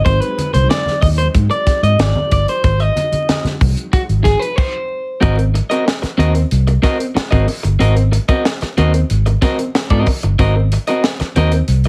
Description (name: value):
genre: funk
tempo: 93 BPM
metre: 4/4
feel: straight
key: Ab mixolydian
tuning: A4 = 440 Hz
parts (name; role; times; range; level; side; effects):
- electric guitar at the edge of break-up; accompaniment; 0.0-11.9 s; C4 to Eb5; -20 LUFS; equal; none
- string machine, full ensemble; sustained chords; 0.0-4.5 s; Gb3 to Eb4; -32 LUFS; equal; ensemble chorus
- vintage muted fingered electric bass; bass; 0.1-11.9 s; G1 to Ab2; -16 LUFS; equal; none
- tight funk drum kit; drums; 0.1-11.9 s; crash cymbal, hi-hat, kick drum, snare drum; -20 LUFS; equal; none
- congas; percussion; 0.1-4.2 s; none; -27 LUFS; equal; none
room: light reverb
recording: vinyl crackle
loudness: -15 LUFS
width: mono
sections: 0.0-5.2 A section; 5.2-11.9 B section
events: clean electric guitar solo 0.0-5.2; stop 4.6-5.2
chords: 0.0 Ab7; 5.2 Ab9